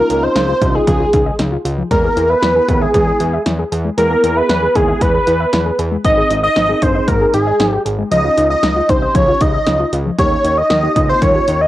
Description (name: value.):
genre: synth-pop.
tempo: 116 BPM.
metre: 4/4.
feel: straight.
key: unclear.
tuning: A4 = 440 Hz.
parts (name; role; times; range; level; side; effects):
wide unison lead; melody; 0.0-11.7 s; Ab4 to Eb5; -14 LUFS; equal; cassette tape.
tine electric piano; accompaniment; 0.0-11.6 s; Bb3 to Bb4; -23 LUFS; right 2 dB; phaser, cassette tape.
soft round pluck; arpeggios; 0.0-11.7 s; F3 to E5; -22 LUFS; left 1 dB; chorus, cassette tape, analog delay.
fat analog bass; bass; 0.0-11.7 s; G1 to E2; -20 LUFS; equal; none.
punchy analog drum machine; drums; 0.1-11.6 s; hi-hat, kick drum, snare drum; -18 LUFS; equal; cassette tape.
room: moderate studio reverb, RT60 0.5 s.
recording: home recording on cassette.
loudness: -12 LUFS.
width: side -14 dB against mid.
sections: 0.0-11.7 A section.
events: none.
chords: 0.0 Dbadd9; 1.9 E; 6.0 Ab; 8.1 Dbadd9; 10.2 Eb.